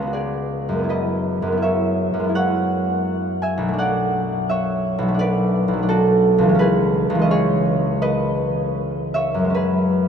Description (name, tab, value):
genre	classical, solo harp piece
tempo	83 BPM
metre	4/4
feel	uneven beats, rubato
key	F# minor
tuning	A4 = 440 Hz
part	concert harp	solo	0.0-10.1 s	B1 to G#5	-17 LUFS	equal	none
room	wet cathedral reverb, RT60 5.6 s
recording	in a vast, echoing space, nothing above 11.0 kHz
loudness	-17 LUFS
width	side -7 dB against mid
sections	0.0-10.1 A section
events	none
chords	0.0 C#7sus4; 0.9 F#9sus4; 3.8 Bm7; 6.6 C#m7; 9.5 F#sus2